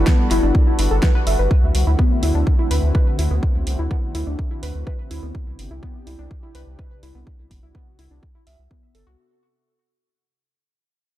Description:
progressive house; 125 BPM; 4/4; straight; A4 = 442 Hz
lush unison pad; sustained chords; 0.0-9.2 s; C3 to B4; -29 LUFS; equal; chorus, sidechain pumping
round analog bass; bass; 0.0-9.2 s; G1 to D2; -20 LUFS; equal; sidechain pumping
soft round pluck; arpeggios; 0.1-9.1 s; B3 to E5; -26 LUFS; left 2 dB; lush chorus, sidechain pumping, digital delay
electronic kick drum; drums; 0.1-8.8 s; -18 LUFS; equal
pop drum kit; drums; 0.1-9.0 s; hi-hat, snare drum; -28 LUFS; equal
digital ambience; dark, warm production; -16 LUFS; side -14 dB against mid
0.0-9.2 A section
fade-out 0.0-9.2; filter sweep on analog synth pad 0.0-9.2
0.0 Gmaj7; 1.5 D7; 5.3 Cadd9

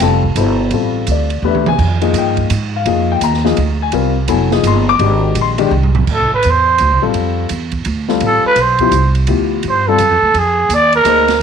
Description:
modal jazz; 168 BPM; 3/4; swing 64% on 8ths; A4 = 440 Hz
dark baby grand piano; accompaniment; 0.0-11.3 s; B2 to D6; -16 LUFS; left 9 dB
upright bass; bass; 0.0-11.4 s; F1 to Ab2; -16 LUFS; right 2 dB
open jazz drum kit; drums; 0.0-11.3 s; crash cymbal, hi-hat, kick drum, ride cymbal, snare drum, toms; -23 LUFS; right 9 dB
growling trumpet; melody; 6.1-11.4 s; Ab4 to D5; -12 LUFS; right 3 dB
light reverb, studio reverb; 1960s-style stereo with parts hard left and right; -11 LUFS; side -7 dB against mid
0.0-6.1 A section; 6.1-11.4 A section
drum fill 1.4-1.8, 5.7-6.1; trumpet solo 6.1-11.4
0.0 Dm9; 1.8 Fm9; 6.1 Dm9; 10.3 Fm7

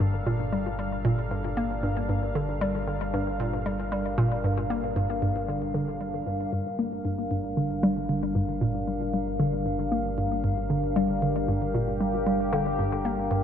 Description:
ambient; 115 BPM; 4/4; straight; G minor; A4 = 440 Hz
sweeping resonant pad; sustained chords; 0.0-13.4 s; G3 to F5; -30 LUFS; left 1 dB; wide subtle chorus
hollow square pluck; riff; 0.0-13.4 s; G2 to Bb3; -27 LUFS; equal; chorus, ping-pong delay
warm sub bass; bass; 0.0-13.4 s; G1; -36 LUFS; equal
wet cathedral reverb, RT60 5.8 s; in a vast, echoing space, cassette tape; -25 LUFS; side -8 dB against mid
0.0-13.4 A section
fade-in on analog synth pad 0.0-13.4
0.0 Gm7

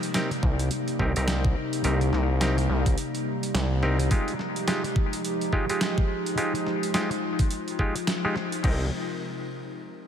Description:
glitch hop; 106 BPM; 4/4; swing 60% on 16ths; C minor; A4 = 442 Hz
warbly tape-like pad; sustained chords; 0.0-8.9 s; C3 to G4; -30 LUFS; left 1 dB; chorus, built-in reverb, vintage 12-bit sampler grit, sidechain pumping
boom bap sampler-style drum kit; drums; 0.0-8.8 s; crash cymbal, hi-hat, snare drum; -32 LUFS; right 1 dB; overdrive
overdriven clav; stabs; 0.1-8.9 s; Ab3 to Bb4; -30 LUFS; equal; sidechain pumping, low-pass filter, ping-pong delay
gritty driven synth bass; bass; 0.4-4.1, 8.6-8.9 s; C2; -25 LUFS; equal; tube saturation
electronic kick drum; drums; 0.4-8.8 s; -24 LUFS; equal
moderate huge ambient reverb, RT60 4.5 s; dreamy mix soaked in reverb; -24 LUFS; side -8 dB against mid
0.0-8.6 A section; 8.6-10.1 B section
0.0 Cm7; 4.1 Fm9; 8.6 Cm7

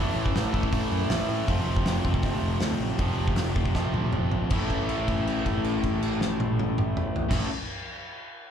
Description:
punk rock; 159 BPM; 4/4; straight; A4 = 441 Hz
biting overdriven guitar; riff; 0.0-1.5 s; A2 to A3; -34 LUFS; equal; slapback echo
distorted electric guitar; riff; 0.0-7.5 s; A2 to F4; -31 LUFS; left 11 dB; distortion, slapback echo
overdriven electric guitar; riff; 0.0-7.5 s; F2 to A3; -30 LUFS; right 8 dB; slapback echo
fuzz picked electric bass; bass; 0.0-7.5 s; F1 to A2; -30 LUFS; equal; overdrive
loose indie drum kit; drums; 0.3-7.4 s; crash cymbal, hi-hat, kick drum, snare drum, toms; -28 LUFS; equal
little or no reverb; live gig heard through the venue's PA, club reverb; -24 LUFS; side -8 dB against mid
0.0-4.5 A section; 4.5-7.5 B section
drum fill 3.7-4.5; held note 4.5-7.3
0.0 A; 1.5 F; 4.5 A

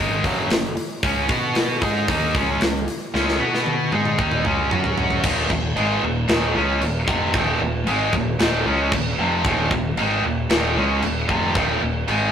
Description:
heavy metal; 114 BPM; 4/4; straight; Eb minor; A4 = 440 Hz
tight distorted guitar; riff; 0.0-12.3 s; Eb2 to B4; -21 LUFS; equal; distortion
fuzz fingered electric bass; bass; 0.0-12.3 s; Eb1 to B2; -26 LUFS; equal; overdrive
tight metal drum kit; drums; 0.2-12.2 s; crash cymbal, hi-hat, kick drum, snare drum, toms; -23 LUFS; equal
moderate studio reverb, RT60 0.5 s; rough rehearsal-room recording, tube saturation; -18 LUFS; side -8 dB against mid
0.0-5.2 A section; 5.2-12.3 B section
drum fill 3.1-5.2; half time 5.2-12.3
0.0 Gb5; 1.0 Db5; 1.3 B5; 1.8 Db5; 3.4 B5; 3.9 Db5; 4.7 Gb5; 5.2 Eb5

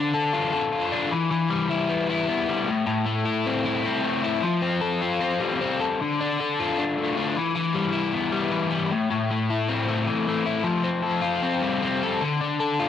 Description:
rock; 154 BPM; 4/4; straight; A minor; A4 = 440 Hz
overdriven electric guitar; solo; 0.0-12.9 s; A2 to A4; -22 LUFS; left 3 dB; cassette tape
light reverb, digital ambience; home recording on cassette; -22 LUFS; side -9 dB against mid
0.0-4.4 A section; 4.4-12.9 B section
0.0 Dm; 1.1 Em; 2.7 Am; 4.4 Fadd9; 6.0 Dm; 7.4 Em; 8.9 Am; 10.7 Fadd9; 12.2 Dm

